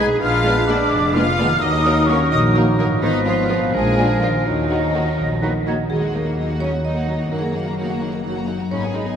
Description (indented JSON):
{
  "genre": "cinematic",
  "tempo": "85 BPM (dotted quarters)",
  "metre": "6/8",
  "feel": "straight",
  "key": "Eb minor",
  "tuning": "A4 = 441 Hz",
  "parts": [
    { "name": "rich studio violin section", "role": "melody", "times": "0.0-9.2 s", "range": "Eb4 to Cb6", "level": "-30 LUFS", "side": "left 3 dB", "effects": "none" },
    { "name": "bright large flute ensemble", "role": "second line", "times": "0.0-5.6 s", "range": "Eb5 to F6", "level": "-23 LUFS", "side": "equal", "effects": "none" },
    { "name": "clear oboe", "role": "second line", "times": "0.0-5.8 s", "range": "Bb4 to Db5", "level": "-30 LUFS", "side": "right 2 dB", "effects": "none" },
    { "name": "dark clarinet", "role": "second line", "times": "0.0-5.6 s", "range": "Cb4 to Eb4", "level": "-27 LUFS", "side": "left 3 dB", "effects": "none" },
    { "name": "warm studio violin section", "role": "second line", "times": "0.0-9.2 s", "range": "Cb4 to Cb5", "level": "-31 LUFS", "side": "left 1 dB", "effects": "none" },
    { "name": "mellow bassoon", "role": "accompaniment", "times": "0.0-5.6 s", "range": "F3 to Ab3", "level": "-26 LUFS", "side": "right 4 dB", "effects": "none" },
    { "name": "warm studio viola section", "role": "accompaniment", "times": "0.0-9.2 s", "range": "Eb3 to Cb4", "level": "-28 LUFS", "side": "right 2 dB", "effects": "none" },
    { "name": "warm French horn section", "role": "sustained chords", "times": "0.0-5.8 s", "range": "F3 to Eb4", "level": "-30 LUFS", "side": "left 1 dB", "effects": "none" },
    { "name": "concert harp", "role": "arpeggios", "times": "0.0-9.2 s", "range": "Gb2 to Cb5", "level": "-24 LUFS", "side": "left 1 dB", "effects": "none" },
    { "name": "rich studio cello section", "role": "bass", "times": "0.0-9.2 s", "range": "Eb3 to Ab4", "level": "-26 LUFS", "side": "equal", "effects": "none" },
    { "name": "rich studio double bass section", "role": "bass", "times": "0.0-9.2 s", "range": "F1 to Eb2", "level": "-24 LUFS", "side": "equal", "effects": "none" },
    { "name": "marimba with medium hard mallets", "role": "melody", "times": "5.9-9.2 s", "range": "Ab4 to Eb5", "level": "-28 LUFS", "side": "right 1 dB", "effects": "none" }
  ],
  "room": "wet cathedral reverb, RT60 5.2 s",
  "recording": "in a vast, echoing space",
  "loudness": "-16 LUFS",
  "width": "side -8 dB against mid",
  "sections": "0.0-5.9 A section; 5.9-9.2 A section",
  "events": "none",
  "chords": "0.2 Bb7b9; 1.6 Ebm; 3.0 Fdim/Ab; 3.7 Bb7; 4.5 Ebm; 7.3 Ebm/Gb",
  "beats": "| 0.22 0.92 | 1.61 2.32 | 3.02 3.74 | 4.46 5.19 | 5.91 6.62 | 7.32 8.02 | 8.71"
}